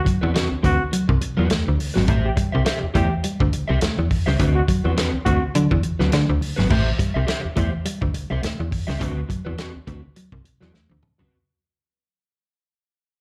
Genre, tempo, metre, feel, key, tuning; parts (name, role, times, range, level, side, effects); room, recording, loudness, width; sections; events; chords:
funk; 104 BPM; 4/4; swing 56% on 16ths; A4 = 439 Hz
warm trombone; second line; 0.0-5.4 s; F#4 to G4; -29 LUFS; equal; slapback echo
electric guitar at the edge of break-up; accompaniment; 0.0-11.4 s; C4 to E5; -31 LUFS; equal; analog chorus, slapback echo
clean electric guitar; riff; 0.0-11.3 s; F#3 to D4; -30 LUFS; equal
warm soul drum kit; drums; 0.1-11.3 s; crash cymbal, hi-hat, kick drum, snare drum, toms; -26 LUFS; equal
slap-like FM bass; bass; 0.2-11.3 s; G#1 to D3; -23 LUFS; equal
studio ambience; live gig heard through the venue's PA, club reverb; -21 LUFS; mono
0.0-6.7 A section; 6.7-11.3 B section
fade-out 6.7-11.3; drum fill 10.7-11.3
0.0 D13; 2.1 Am7; 4.4 D13; 6.7 Am7; 9.0 D13